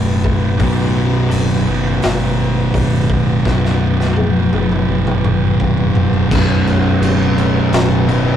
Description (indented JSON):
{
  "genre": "stoner and doom metal",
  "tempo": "84 BPM",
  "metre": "4/4",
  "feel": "straight",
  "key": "B minor",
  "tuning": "A4 = 439 Hz",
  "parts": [
    { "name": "tonewheel organ", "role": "sustained chords", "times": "0.0-8.4 s", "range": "B3 to B4", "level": "-27 LUFS", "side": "equal", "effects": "overdrive, chorus vibrato" },
    { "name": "thick fuzz guitar", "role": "riff", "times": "0.0-8.4 s", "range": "B1 to B2", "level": "-17 LUFS", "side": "left 2 dB", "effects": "distortion" },
    { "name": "thick fuzz guitar", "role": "riff", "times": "0.0-8.4 s", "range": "B1 to B2", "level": "-17 LUFS", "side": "right 3 dB", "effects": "distortion" },
    { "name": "growling fingered electric bass", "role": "bass", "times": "0.0-8.3 s", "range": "B0 to G1", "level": "-24 LUFS", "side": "left 1 dB", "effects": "overdrive" },
    { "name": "raw garage drum kit", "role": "drums", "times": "0.2-8.2 s", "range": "crash cymbal, hi-hat, kick drum, snare drum, toms", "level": "-20 LUFS", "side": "left 1 dB", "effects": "none" },
    { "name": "raw garage guitar", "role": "riff", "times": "6.3-8.4 s", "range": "B1 to B2", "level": "-22 LUFS", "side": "left 1 dB", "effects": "overdrive" }
  ],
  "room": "wet booth ambience, RT60 0.3 s",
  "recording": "rough rehearsal-room recording, tube saturation",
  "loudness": "-12 LUFS",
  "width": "side -9 dB against mid",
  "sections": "0.0-6.3 A section; 6.3-8.4 B section",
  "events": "drum fill 3.4-6.3",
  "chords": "0.0 Bm"
}